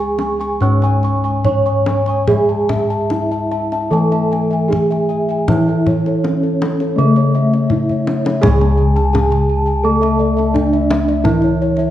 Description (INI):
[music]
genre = Javanese gamelan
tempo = 72-85 BPM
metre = 4/4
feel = straight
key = C# pelog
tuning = A4 = 438 Hz
[part]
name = gamelan-type bronze metallophone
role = melody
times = 0.0-11.9 s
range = A3 to C#5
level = -19 LUFS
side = right 1 dB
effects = none
[part]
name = gamelan-type bronze metallophone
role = accompaniment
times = 0.0-11.9 s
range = E3 to C#4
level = -21 LUFS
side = equal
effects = none
[part]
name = gamelan-type bossed gongs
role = arpeggios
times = 0.0-11.9 s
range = A4 to C#6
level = -24 LUFS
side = left 4 dB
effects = tape echo
[part]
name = gamelan-type bronze metallophone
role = arpeggios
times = 0.0-11.9 s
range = A4 to C#6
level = -25 LUFS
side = right 2 dB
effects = none
[part]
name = gamelan-type bossed gongs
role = bass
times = 0.0-11.9 s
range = C#2 to G#4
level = -18 LUFS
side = left 1 dB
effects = none
[part]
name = kendang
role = percussion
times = 0.2-11.9 s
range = none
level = -21 LUFS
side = left 2 dB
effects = none
[sound]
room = moderate recital hall reverb, RT60 1.4 s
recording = none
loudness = -13 LUFS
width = side -12 dB against mid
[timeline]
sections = 0.0-8.4 A section; 8.4-11.9 B section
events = drum fill 7.9-8.4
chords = none